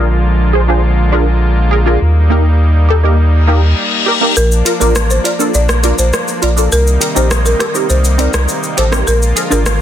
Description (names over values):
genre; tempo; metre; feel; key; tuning
dancehall; 102 BPM; 4/4; straight; Bb major; A4 = 440 Hz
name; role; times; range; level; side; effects
punchy chord stab; accompaniment; 0.0-9.6 s; Bb3 to C5; -17 LUFS; right 1 dB; chorus, phaser, low-pass filter
pipe organ, strings celeste; sustained chords; 0.0-9.8 s; C3 to F4; -20 LUFS; equal; low-pass filter
warm sub bass; bass; 0.0-9.8 s; Ab1 to Eb2; -11 LUFS; equal; none
reverse cymbal; sound effects; 3.4-4.4 s; none; -16 LUFS; left 7 dB; none
folk marimba with medium mallets; melody; 4.4-9.6 s; Bb4 to D5; -18 LUFS; equal; ping-pong delay
deep house drum kit; drums; 4.4-9.8 s; hi-hat, rim click, shaker; -17 LUFS; equal; soft clipping on snare
tube shaker and timbales; percussion; 4.4-9.8 s; none; -29 LUFS; left 10 dB; none
room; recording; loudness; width
little or no reverb; dense, heavily limited modern master; -10 LUFS; side -10 dB against mid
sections
0.0-4.4 A section; 4.4-9.8 B section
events
reverse cymbal 3.4-4.4; break 3.8-4.4; kick muted 4.4-9.8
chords
0.0 Bb7; 2.0 Eb; 4.4 Bb; 6.7 Cm7; 9.1 Bb7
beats
0.25 0.84 1.43 | 2.02 2.60 3.19 3.78 | 4.37 4.96 5.54 6.13 | 6.72 7.31 7.90 8.48 | 9.07 9.66